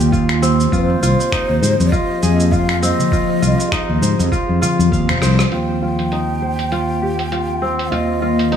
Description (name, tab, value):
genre	organic downtempo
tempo	100 BPM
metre	4/4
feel	swing 57% on 16ths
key	unclear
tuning	A4 = 440 Hz
part	breathy mellow ney	melody	0.0-8.6 s	C5 to G5	-24 LUFS	right 1 dB	digital delay
part	ethereal airy pad	sustained chords	0.0-8.6 s	Eb3 to Bb4	-22 LUFS	left 2 dB	ensemble chorus, built-in reverb, phaser, sidechain pumping
part	kora	arpeggios	0.0-8.6 s	C4 to F5	-21 LUFS	right 1 dB	low-pass filter, digital delay
part	fretless electric bass	bass	0.0-8.6 s	F1 to Ab2	-17 LUFS	left 1 dB	sidechain pumping
part	dusty soul sampler-style drum kit	drums	0.0-8.6 s	finger snaps, hi-hat, rim click, shaker	-24 LUFS	equal	low-pass filter on perc, low-pass filter on snare, low-pass filter on hats, low-pass filter on room
part	electronic kick drum	drums	0.1-5.1 s	none	-20 LUFS	equal	none
part	darbuka	percussion	0.4-5.5 s	none	-28 LUFS	right 1 dB	none
room	moderate scoring stage reverb, RT60 1.9 s, digital ambience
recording	small room ambience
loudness	-14 LUFS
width	side -8 dB against mid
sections	0.0-5.5 A section; 5.5-8.6 B section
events	band accent 5.1; drum fill 5.2-5.5; filter sweep on kora 5.5-8.6; filter sweep on ambient pad 5.5-8.6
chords	0.0 Eb; 0.7 Fm9; 5.5 Eb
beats	0.12 | 0.72 1.32 1.93 2.52 | 3.12 3.73 4.33 4.92 | 5.53 6.12 6.72 7.33 | 7.92 8.53